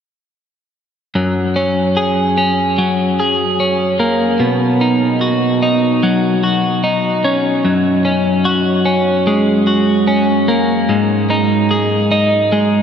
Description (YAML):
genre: pop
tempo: 74 BPM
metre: 4/4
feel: straight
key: F# major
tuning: A4 = 440 Hz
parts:
  - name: twelve-string electric guitar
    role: solo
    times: 1.2-12.8 s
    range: F#2 to G#4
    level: -12 LUFS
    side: equal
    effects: spring reverb, diffuse ambient delay
room: wet huge ambient reverb, RT60 8.9 s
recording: dreamy mix soaked in reverb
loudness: -12 LUFS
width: side -7 dB against mid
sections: 1.2-12.8 A section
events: none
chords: 1.2 F#add9; 4.4 Badd9; 7.6 F#add9; 10.9 G#5